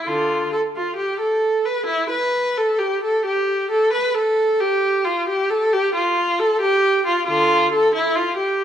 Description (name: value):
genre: classical, baroque-style suite movement for unaccompanied viola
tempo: 67 BPM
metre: 4/4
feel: rubato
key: unclear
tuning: A4 = 439 Hz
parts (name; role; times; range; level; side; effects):
- rich viola; solo; 0.0-8.6 s; D3 to B4; -17 LUFS; equal; none
room: moderate scoring stage reverb, RT60 1.5 s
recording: nothing above 10.5 kHz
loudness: -17 LUFS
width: side -9 dB against mid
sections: 0.0-8.6 A section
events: none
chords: none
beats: | 0.06 0.97 1.87 2.79 | 3.71 4.60 5.49 6.38 | 7.27 8.17